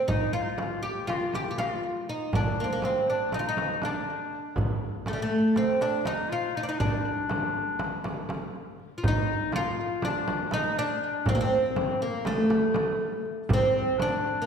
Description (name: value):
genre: Turkish makam ensemble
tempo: 242 BPM (eighths)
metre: 9/8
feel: straight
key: D makam kurdi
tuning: A4 = 440 Hz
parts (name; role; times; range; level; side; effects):
- bright clarinet; second line; 0.0-14.5 s; A3 to G4; -33 LUFS; left 5 dB; none
- oud; melody; 0.1-14.5 s; G3 to G4; -27 LUFS; right 1 dB; tape echo
- darbuka; percussion; 0.1-14.1 s; none; -33 LUFS; right 1 dB; none
- frame drum; percussion; 0.1-14.1 s; none; -33 LUFS; right 1 dB; none
room: wet scoring stage reverb, RT60 1.6 s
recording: heard from further back in the room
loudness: -25 LUFS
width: side -7 dB against mid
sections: 0.0-9.0 A section; 9.0-14.5 B section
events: none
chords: none